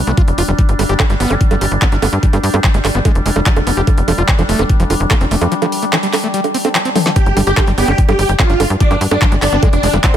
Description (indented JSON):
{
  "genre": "psychedelic trance",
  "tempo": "146 BPM",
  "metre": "4/4",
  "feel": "straight",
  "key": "unclear",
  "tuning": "A4 = 439 Hz",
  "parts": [
    { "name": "overtone-sweeping drone", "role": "sustained chords", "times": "0.0-10.2 s", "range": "G3 to D4", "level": "-21 LUFS", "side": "left 2 dB", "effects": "chorus, built-in reverb, sidechain pumping" },
    { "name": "tight sequencer bass", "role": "bass", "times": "0.0-10.2 s", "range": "F1 to G2", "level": "-16 LUFS", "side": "equal", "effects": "none" },
    { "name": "overdriven acid bass", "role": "riff", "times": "0.1-10.1 s", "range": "E3 to G4", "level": "-21 LUFS", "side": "right 1 dB", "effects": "auto-pan, sidechain pumping, dub echo" },
    { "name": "drum and bass drum kit", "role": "drums", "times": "0.1-10.2 s", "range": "bongos, handclaps, hi-hat, snare drum, toms", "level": "-18 LUFS", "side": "right 2 dB", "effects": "overdrive" },
    { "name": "electronic kick drum", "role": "drums", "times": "0.2-10.1 s", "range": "none", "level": "-13 LUFS", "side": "equal", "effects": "overdrive" },
    { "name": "dense compressed supersaw", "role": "melody", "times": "7.2-10.2 s", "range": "C4 to G4", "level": "-17 LUFS", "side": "right 1 dB", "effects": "phaser, cassette tape, sidechain pumping, dub echo" }
  ],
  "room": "light reverb, digital ambience",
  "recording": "none",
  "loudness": "-11 LUFS",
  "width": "side -10 dB against mid",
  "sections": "0.0-10.2 A section",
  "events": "drum fill 7.0",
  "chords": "0.0 F5; 0.6 G5; 3.9 F5; 7.2 G5"
}